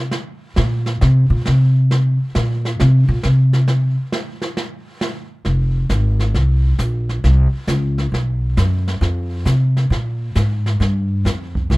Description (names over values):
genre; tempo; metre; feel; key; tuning
jazz piano trio; 135 BPM; 4/4; swing 66% on 8ths; F minor; A4 = 441 Hz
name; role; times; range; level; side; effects
upright bass; bass; 0.0-11.8 s; F1 to C3; -15 LUFS; equal; none
jazz brush drum kit; drums; 0.1-11.8 s; brushed snare drum, hi-hat, kick drum, snare drum; -26 LUFS; right 2 dB; none
room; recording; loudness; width
little or no reverb; none; -15 LUFS; side -22 dB against mid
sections
0.0-5.5 A section; 5.5-11.8 B section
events
upright bass solo 0.0-5.5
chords
none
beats
| 0.11 0.56 1.00 1.45 | 1.89 2.34 2.78 3.23 | 3.67 4.12 4.56 5.01 | 5.45 5.90 6.35 6.79 | 7.24 7.68 8.13 8.58 | 9.02 9.47 9.91 10.36 | 10.81 11.26 11.70